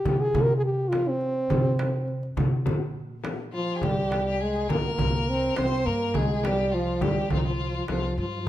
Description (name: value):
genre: Arabic maqam ensemble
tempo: 103 BPM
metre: 4/4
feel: straight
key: C maqam bayati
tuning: A4 = 440 Hz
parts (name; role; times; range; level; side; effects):
- warm French horn; melody; 0.0-8.5 s; F3 to Bb4; -26 LUFS; right 1 dB; none
- upright bass; bass; 0.1-8.4 s; C2 to C3; -29 LUFS; equal; none
- darbuka; percussion; 0.1-8.4 s; none; -31 LUFS; right 2 dB; none
- frame drum; percussion; 0.1-8.5 s; none; -32 LUFS; left 4 dB; none
- clear violin; second line; 3.5-8.5 s; Eb4 to C5; -32 LUFS; left 3 dB; none
room: light reverb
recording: minimal, uncompressed stereo recording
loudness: -23 LUFS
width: side -13 dB against mid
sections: 0.0-3.8 A section; 3.8-8.5 B section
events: none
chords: none